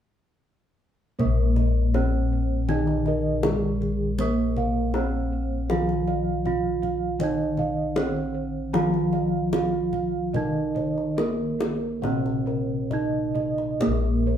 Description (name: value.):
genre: Javanese gamelan.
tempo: 66-80 BPM.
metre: 4/4.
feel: straight.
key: Bb slendro.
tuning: A4 = 440 Hz.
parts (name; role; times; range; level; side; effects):
gamelan-type bronze metallophone; melody; 1.2-14.4 s; Ab3-40c to F4+20c; -28 LUFS; right 6 dB; none.
gamelan-type bronze metallophone; accompaniment; 1.2-14.4 s; C3+40c to Bb3; -30 LUFS; left 3 dB; none.
gamelan-type bossed gongs; arpeggios; 1.2-14.4 s; Ab4-40c to F5+20c; -34 LUFS; left 1 dB; none.
gamelan-type bronze metallophone; arpeggios; 1.2-14.4 s; Ab4-40c to F5+20c; -33 LUFS; right 4 dB; none.
gamelan-type bossed gongs; bass; 1.2-14.4 s; Bb1 to Bb4; -27 LUFS; left 2 dB; none.
kendang; percussion; 1.2-14.0 s; none; -31 LUFS; left 1 dB; none.
room: moderate stone room reverb, RT60 0.9 s.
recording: band playing live in one room.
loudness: -22 LUFS.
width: side -9 dB against mid.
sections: 1.2-13.8 A section.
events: none.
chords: none.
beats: | 1.20 1.95 2.70 3.45 | 4.20 4.95 5.70 6.45 | 7.20 7.96 8.73 9.53 | 10.34 11.18 12.04 12.91 | 13.81.